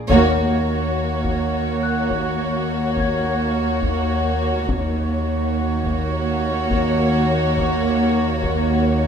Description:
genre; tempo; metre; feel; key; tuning
cinematic, suspense film score; 52 BPM; 4/4; straight; Eb minor; A4 = 440 Hz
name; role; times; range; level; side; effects
celesta; texture; 0.0-9.1 s; F6 to Ab6; -32 LUFS; left 4 dB; none
warm chamber violin section; melody; 0.1-9.1 s; Db5; -26 LUFS; left 2 dB; none
warm studio violin section; second line; 0.1-9.1 s; Gb4; -25 LUFS; equal; none
dark symphonic viola section; accompaniment; 0.1-9.1 s; Bb3; -24 LUFS; right 1 dB; none
warm chamber cello section; bass; 0.1-9.1 s; Eb2; -25 LUFS; right 1 dB; none
warm chamber double bass section; bass; 0.1-9.1 s; Eb2; -24 LUFS; right 2 dB; none
taiko ensemble; drums; 0.1-9.1 s; none; -28 LUFS; left 2 dB; none
room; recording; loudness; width
moderate scoring stage reverb, RT60 1.6 s; none; -18 LUFS; side -7 dB against mid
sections
0.1-9.1 A section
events
band accent 0.1-1.2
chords
0.1 Ebm7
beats
| 0.09 1.24 2.39 3.54 | 4.68 5.84 6.99 8.14

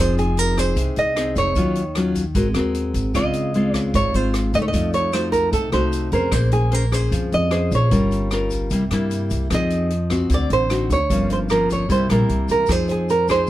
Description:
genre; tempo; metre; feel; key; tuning
bossa nova; 151 BPM; 4/4; straight; F minor; A4 = 440 Hz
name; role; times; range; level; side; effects
nylon-string guitar; melody; 0.0-13.5 s; Ab4 to Eb5; -22 LUFS; right 2 dB; none
nylon-string guitar; accompaniment; 0.0-13.5 s; G2 to C5; -22 LUFS; left 2 dB; none
upright bass; bass; 0.0-13.4 s; F1 to G2; -23 LUFS; equal; none
open jazz drum kit; drums; 0.2-13.4 s; hi-hat, kick drum, rim click; -28 LUFS; equal; none
tube shaker; percussion; 0.2-13.5 s; none; -41 LUFS; left 5 dB; none
tine electric piano; accompaniment; 12.9-13.5 s; C5; -30 LUFS; right 2 dB; none
room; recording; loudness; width
little or no reverb; close, detailed microphones; -17 LUFS; side -14 dB against mid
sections
0.0-12.7 A section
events
none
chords
0.0 Fm7; 1.6 Ebm9; 2.4 Ab9; 3.1 Dbmaj7; 4.7 F7b9; 6.3 Bbm9; 7.9 Gm7b5; 8.7 C7; 9.5 Fm7; 10.3 D7b9; 11.1 Gm7b5; 11.9 C7; 12.7 Fm7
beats
0.37 0.76 1.16 | 1.56 1.95 2.35 2.75 | 3.15 3.54 3.94 4.34 | 4.73 5.13 5.53 5.93 | 6.33 6.72 7.12 7.52 | 7.92 8.32 8.71 9.11 | 9.51 9.91 10.30 10.70 | 11.10 11.50 11.90 12.29 | 12.69 13.09 13.48

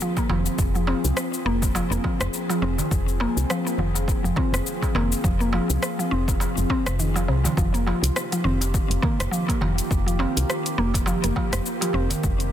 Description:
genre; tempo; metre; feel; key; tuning
organic downtempo; 103 BPM; 4/4; swing 57% on 16ths; F minor; A4 = 440 Hz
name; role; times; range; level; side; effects
warbly tape-like pad; sustained chords; 0.0-12.5 s; Eb3 to Ab4; -29 LUFS; equal; chorus, built-in reverb, sidechain pumping
mallet-like synth pluck; arpeggios; 0.0-12.1 s; C3 to C4; -27 LUFS; equal; chorus, ping-pong delay
deep house drum kit; drums; 0.0-12.5 s; cabasa, hi-hat, rim click; -30 LUFS; left 2 dB; overdrive
electronic kick drum; drums; 0.2-12.4 s; none; -26 LUFS; equal; overdrive
darbuka; percussion; 0.2-12.2 s; none; -33 LUFS; right 3 dB; none
woody FM bass; bass; 0.3-12.5 s; F1 to C2; -25 LUFS; equal; sidechain pumping
riser; sound effects; 12.4-12.5 s; none; -42 LUFS; left 7 dB; none
room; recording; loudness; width
light reverb, digital ambience; dense, heavily limited modern master; -21 LUFS; side -10 dB against mid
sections
0.0-12.5 A section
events
none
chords
0.0 Fm; 7.6 Ebadd9/F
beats
0.00 | 0.59 1.17 1.75 2.33 | 2.92 3.50 4.08 4.66 | 5.25 5.83 6.41 6.99 | 7.58 8.16 8.74 9.32 | 9.91 10.49 11.07 11.65 | 12.24

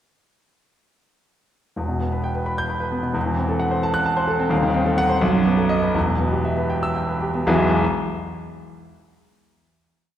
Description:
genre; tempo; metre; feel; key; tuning
classical, virtuoso piano study; 77-89 BPM (dotted quarters); 6/8; rubato; E minor; A4 = 440 Hz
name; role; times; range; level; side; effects
clear grand piano; solo; 1.8-7.8 s; D#1 to G6; -19 LUFS; equal; none
room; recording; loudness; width
wet concert hall reverb, RT60 1.9 s; heard from further back in the room; -19 LUFS; side -10 dB against mid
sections
1.8-7.5 A section; 7.5-8.9 final chord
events
none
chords
1.8 Em; 3.2 F#m7b5/E; 4.5 D#dim7; 5.2 B7; 6.0 Em; 7.5 E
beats
| 1.77 2.47 | 3.16 3.84 | 4.52 5.22 | 5.96 6.71 | 7.47

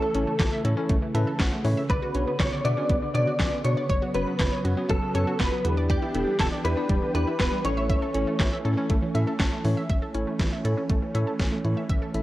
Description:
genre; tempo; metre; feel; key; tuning
synth-pop; 120 BPM; 4/4; straight; unclear; A4 = 441 Hz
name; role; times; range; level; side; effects
direct-recorded clean electric guitar; melody; 0.0-9.4 s; G4 to D5; -29 LUFS; equal; ensemble chorus, slapback echo
bell-like tine electric piano; accompaniment; 0.0-12.2 s; C#4 to A5; -31 LUFS; left 2 dB; medium stereo tremolo
brassy analog pad; sustained chords; 0.0-12.2 s; C#3 to G4; -32 LUFS; right 1 dB; chorus
analog pluck; arpeggios; 0.0-12.2 s; C#3 to E5; -33 LUFS; right 2 dB; chorus, slapback echo
rubbery square bass; bass; 0.1-12.2 s; E1 to B2; -27 LUFS; equal; none
pop drum kit; drums; 0.1-12.2 s; handclaps, hi-hat, kick drum, snare drum; -26 LUFS; equal; overdrive
room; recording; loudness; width
moderate plate reverb, RT60 2.1 s; worn, warbling old tape, cassette tape, warbly pitch drift; -22 LUFS; side -16 dB against mid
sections
0.0-9.9 A section; 9.9-12.2 B section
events
tine electric piano fill 0.9-1.9, 9.1-9.9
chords
0.0 A; 1.9 Bmadd9; 3.9 F#sus4; 5.6 Em7; 7.6 A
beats
0.40 0.90 1.40 | 1.90 2.40 2.90 3.40 | 3.90 4.40 4.90 5.40 | 5.90 6.40 6.90 7.40 | 7.90 8.40 8.90 9.40 | 9.90 10.40 10.90 11.40 | 11.90

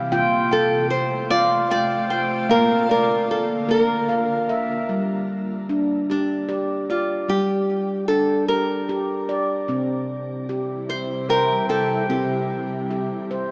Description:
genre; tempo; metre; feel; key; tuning
world meditative, meditative tuned percussion; 50 BPM (dotted quarters); 6/8; straight; unclear; A4 = 438 Hz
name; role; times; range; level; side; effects
granular cloud pad; sustained chords; 0.0-4.9, 10.4-13.5 s; C3 to F4; -29 LUFS; equal; built-in reverb, shimmer reverb
handpan; arpeggios; 0.0-13.5 s; Bb2 to G5; -22 LUFS; equal; shimmer reverb
nylon-string guitar; melody; 0.5-13.5 s; D4 to D5; -22 LUFS; equal; shimmer reverb, tape echo
room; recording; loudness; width
wet concert hall reverb, RT60 2.2 s; small speaker sound; -19 LUFS; side -35 dB against mid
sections
0.0-4.9 A section; 4.9-13.5 B section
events
none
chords
0.1 F; 2.5 Bb; 4.9 G5; 9.7 C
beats
| 0.12 1.31 | 2.50 3.69 | 4.89 6.09 | 7.28 8.48 | 9.69 10.89 | 12.09 13.30

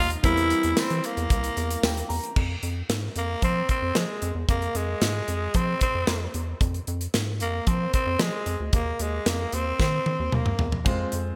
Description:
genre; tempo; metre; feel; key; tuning
1980s-style pop; 113 BPM; 4/4; straight; F minor; A4 = 440 Hz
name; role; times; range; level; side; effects
raspy tenor saxophone; melody; 0.0-10.7 s; Ab3 to F4; -30 LUFS; equal; none
clear baby grand piano; accompaniment; 0.0-2.4, 10.8-11.4 s; Eb3 to Bb5; -33 LUFS; equal; none
rubbery square bass; bass; 0.0-11.3 s; C2 to F3; -31 LUFS; equal; none
modern studio drum kit; drums; 0.1-11.2 s; crash cymbal, hi-hat, kick drum, snare drum, splash cymbal, tambourine, toms; -28 LUFS; equal; gated reverb
room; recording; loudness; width
moderate lush hall reverb, RT60 2.3 s; bright 1980s-style digital production; -26 LUFS; mono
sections
0.0-2.4 A section; 2.4-11.4 B section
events
grand piano fill 1.6-2.4; drum fill 9.8-10.9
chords
0.2 C7/E; 2.4 Fm; 6.6 Dm7b5 (rootless); 8.7 Abadd9/Eb (rootless); 10.9 Fm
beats
| 0.24 0.77 1.30 1.83 | 2.36 2.89 3.42 3.96 | 4.49 5.02 5.55 6.08 | 6.61 7.14 7.67 8.20 | 8.73 9.27 9.80 10.33 | 10.86

